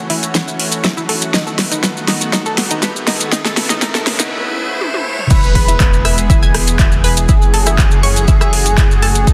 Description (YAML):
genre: progressive house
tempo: 121 BPM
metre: 4/4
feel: straight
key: F# dorian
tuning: A4 = 440 Hz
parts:
  - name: lush unison pad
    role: sustained chords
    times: 0.0-9.3 s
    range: C#3 to G#4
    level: -25 LUFS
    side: equal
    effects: chorus, vintage 12-bit sampler grit, sidechain pumping
  - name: riser and swell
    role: sound effects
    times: 0.5-5.3 s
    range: none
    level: -29 LUFS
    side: equal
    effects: none
  - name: analog pluck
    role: arpeggios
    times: 0.1-9.3 s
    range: D#4 to G#6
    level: -25 LUFS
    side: equal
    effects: chorus, cassette tape, sidechain pumping, delay
  - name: deep house drum kit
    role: drums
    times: 0.1-9.3 s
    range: crash cymbal, handclaps, hi-hat, rim click, snare drum, toms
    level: -20 LUFS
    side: equal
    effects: overdrive, studio reverb
  - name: maracas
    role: percussion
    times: 0.2-9.3 s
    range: none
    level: -25 LUFS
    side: equal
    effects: none
  - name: electronic kick drum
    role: drums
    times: 0.3-9.3 s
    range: none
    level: -15 LUFS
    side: equal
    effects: overdrive, high-pass filter on kick, studio reverb
  - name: unison lead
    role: melody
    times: 5.3-9.3 s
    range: G#4 to B4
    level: -24 LUFS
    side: equal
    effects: lush chorus, sidechain pumping, delay
  - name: airy dreamy lead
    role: second line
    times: 5.3-9.3 s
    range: G#4 to B4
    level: -31 LUFS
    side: equal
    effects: none
  - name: dark detuned saw bass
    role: bass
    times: 5.3-9.3 s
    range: E1 to B1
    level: -19 LUFS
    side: equal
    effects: sidechain pumping
room: light reverb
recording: dense, heavily limited modern master, high-pass filter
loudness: -14 LUFS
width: mono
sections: 0.0-5.3 A section; 5.3-9.3 B section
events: build-up 0.0-5.3; drum fill 0.0-4.3, 4.8-5.3; riser 0.5-5.3; swell 4.3-5.3; drop 5.3-9.3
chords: 0.0 F#m7; 1.3 B7; 3.3 Aadd9; 5.3 E; 7.3 F#m7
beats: 0.35 0.84 | 1.34 1.83 2.33 2.83 | 3.32 3.82 4.31 4.81 | 5.30 5.80 6.30 6.79 | 7.29 7.78 8.28 8.78 | 9.27